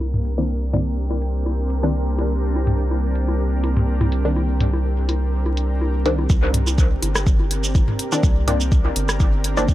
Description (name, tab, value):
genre	dub techno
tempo	124 BPM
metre	4/4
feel	swing 54% on 16ths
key	C minor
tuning	A4 = 440 Hz
part	granular cloud pad	sustained chords	0.0-9.7 s	C4 to Bb4	-28 LUFS	equal	built-in reverb, sidechain pumping
part	round analog bass	bass	0.0-9.7 s	G1 to C2	-21 LUFS	equal	sidechain pumping
part	electronic bongos and toms	percussion	0.0-9.7 s	none	-26 LUFS	left 1 dB	overdrive, sidechain pumping on toms, sidechain pumping on perc, dub echo
part	bubbling stepped-filter texture	texture	0.0-6.3 s	Bb3 to Bb4	-34 LUFS	left 1 dB	chorus, built-in reverb, sidechain pumping
part	deep house drum kit	drums	0.3-9.7 s	hi-hat, rim click, shaker	-26 LUFS	right 1 dB	low-pass filter on perc, low-pass filter on snare, low-pass filter on hats, low-pass filter on room, dub echo
part	filtered dub chord stab	stabs	0.4-9.7 s	Eb3 to D4	-26 LUFS	equal	chorus, phaser, cassette tape, sidechain pumping, dub echo
part	electronic kick drum	drums	6.3-9.7 s	none	-17 LUFS	equal	none
room	little or no reverb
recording	vinyl crackle, low-pass filter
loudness	-18 LUFS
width	side -15 dB against mid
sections	0.0-6.3 A section; 6.3-9.7 B section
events	filter sweep on synth stab 0.0-6.3, 6.3-9.7; filter sweep on ambient pad 0.0-6.3; filter sweep 0.0-6.3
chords	0.0 Cm9